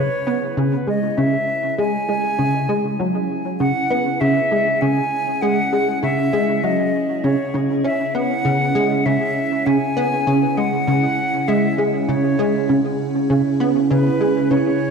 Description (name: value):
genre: ambient, sequencer-driven space music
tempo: 99 BPM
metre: 4/4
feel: straight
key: C# minor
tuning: A4 = 440 Hz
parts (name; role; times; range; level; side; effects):
- breathy silver concert flute; melody; 0.0-14.9 s; B4 to G#5; -22 LUFS; left 1 dB; analog delay
- evolving wavetable pad; sustained chords; 0.0-14.9 s; C#3 to G#4; -24 LUFS; right 2 dB; phaser, built-in reverb
- plucky analog bass; riff; 0.0-14.7 s; C#3 to C#4; -19 LUFS; equal; ensemble chorus, analog delay
room: wet concert hall reverb, RT60 1.8 s, small room ambience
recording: dark, warm production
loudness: -16 LUFS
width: side -5 dB against mid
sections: 0.0-14.9 A section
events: fade-in on ambient pad 0.0-14.9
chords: 0.0 C#m